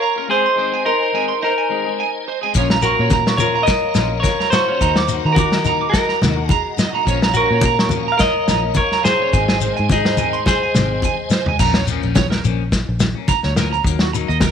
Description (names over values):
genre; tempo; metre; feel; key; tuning
highlife guitar band; 106 BPM; 4/4; swing 53% on 16ths; Bb minor; A4 = 440 Hz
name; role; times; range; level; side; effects
clean electric guitar; melody; 0.0-11.3 s; Eb4 to F5; -18 LUFS; left 1 dB; slapback echo
tonewheel organ; sustained chords; 0.0-11.6 s; Bb4 to Bb5; -30 LUFS; left 1 dB; slow rotary speaker, chorus vibrato
electric guitar at the edge of break-up; arpeggios; 0.0-14.5 s; Gb4 to D6; -22 LUFS; right 10 dB; slapback echo
clean electric guitar; accompaniment; 0.2-14.5 s; Eb3 to Ab4; -28 LUFS; left 14 dB; wide subtle chorus
vintage drum kit; drums; 2.5-14.5 s; crash cymbal, kick drum, snare drum, toms; -20 LUFS; left 1 dB; none
shekere; percussion; 2.5-14.5 s; none; -26 LUFS; left 8 dB; none
fingered electric bass; bass; 2.6-14.5 s; Ab1 to Eb3; -22 LUFS; left 1 dB; none
congas; percussion; 2.6-14.5 s; none; -22 LUFS; left 1 dB; none
room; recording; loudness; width
light reverb, small room ambience; 1960s-style stereo with parts hard left and right; -15 LUFS; side -7 dB against mid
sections
0.0-11.6 A section; 11.6-14.5 B section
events
drum fill 11.0-11.6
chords
0.3 Ab; 2.6 Bbm; 4.8 Ebm; 7.1 Bbm; 9.3 Ab; 11.6 Bbm; 13.8 Ebm